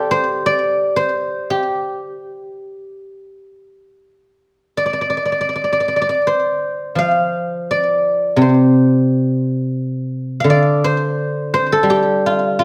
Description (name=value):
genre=chinese traditional, Chinese solo plucked strings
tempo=84 BPM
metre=4/4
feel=uneven beats, rubato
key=C zhi mode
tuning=A4 = 439 Hz
part: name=guzheng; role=solo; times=0.0-12.6 s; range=C3 to C6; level=-17 LUFS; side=equal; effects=slapback echo
room=moderate recital hall reverb, RT60 1.5 s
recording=none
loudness=-17 LUFS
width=mono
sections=0.0-12.6 A section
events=none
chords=none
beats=0.44 1.14 | 1.84 2.56 3.28 4.02 | 4.77 5.52 6.25 6.97 | 7.68 8.39 9.09 9.77 | 10.46 11.16 11.85 12.55